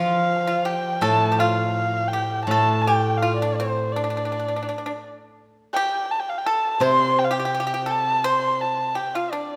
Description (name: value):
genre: chinese traditional, Chinese chamber ensemble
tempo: 83 BPM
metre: 4/4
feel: rubato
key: unclear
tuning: A4 = 440 Hz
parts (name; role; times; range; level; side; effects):
- dark erhu; melody; 0.0-9.6 s; C5 to C6; -25 LUFS; equal; none
- pipa; second line; 0.0-9.6 s; C4 to C5; -29 LUFS; equal; none
- steel-string zither; accompaniment; 0.0-9.0 s; A2 to F3; -28 LUFS; equal; none
room: moderate scoring stage reverb, RT60 1.5 s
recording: none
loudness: -22 LUFS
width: mono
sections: 0.0-9.6 A section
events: none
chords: none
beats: 0.29 1.03 1.76 | 2.48 3.21 3.93 4.65 | 5.37 6.09 6.81 7.52 | 8.24 8.96